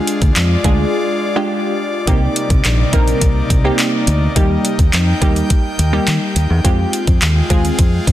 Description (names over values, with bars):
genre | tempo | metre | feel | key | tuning
dance-pop | 105 BPM | 4/4 | straight | C minor | A4 = 440 Hz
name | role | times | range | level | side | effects
glassy wavetable pluck | accompaniment | 0.0-8.0 s | G3 to Bb4 | -19 LUFS | right 1 dB | chorus, sidechain pumping
airy breathy pad | sustained chords | 0.0-8.1 s | C3 to G5 | -22 LUFS | left 2 dB | chorus, sidechain pumping
smooth R&B drum kit | drums | 0.1-8.1 s | handclaps, hi-hat, kick drum | -15 LUFS | equal | none
fingered electric bass | bass | 0.2-8.1 s | Bb1 to Eb3 | -16 LUFS | equal | sidechain pumping
room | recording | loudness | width
light reverb, digital ambience | dense, heavily limited modern master | -12 LUFS | side -13 dB against mid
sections
0.0-8.1 A section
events
break 0.9-2.1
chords
0.0 Ddim; 2.1 Cm7; 4.4 Eb; 6.6 Fmadd9